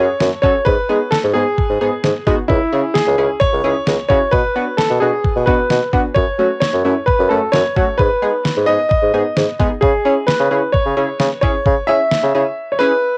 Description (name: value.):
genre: synth-pop.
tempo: 131 BPM.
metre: 4/4.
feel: straight.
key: unclear.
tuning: A4 = 440 Hz.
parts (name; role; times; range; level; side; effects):
clear baby grand piano; melody; 0.0-13.2 s; E4 to E5; -19 LUFS; equal; tape echo.
funky polysynth comp; accompaniment; 0.0-12.9 s; A3 to A4; -24 LUFS; equal; chorus, cassette tape.
warm bassoon; bass; 0.0-12.4 s; C#2 to C#4; -19 LUFS; equal; none.
detuned 8-bit digital drum machine; drums; 0.2-12.2 s; kick drum, snare drum; -21 LUFS; equal; cassette tape.
room: moderate small room ambience, RT60 0.5 s.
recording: home recording on cassette.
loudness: -16 LUFS.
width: mono.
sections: 0.0-13.2 A section.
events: none.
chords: 0.0 F#m; 0.7 G#m; 2.5 C#m; 4.3 Bm; 6.2 F#m; 8.0 G#m; 9.8 C#m.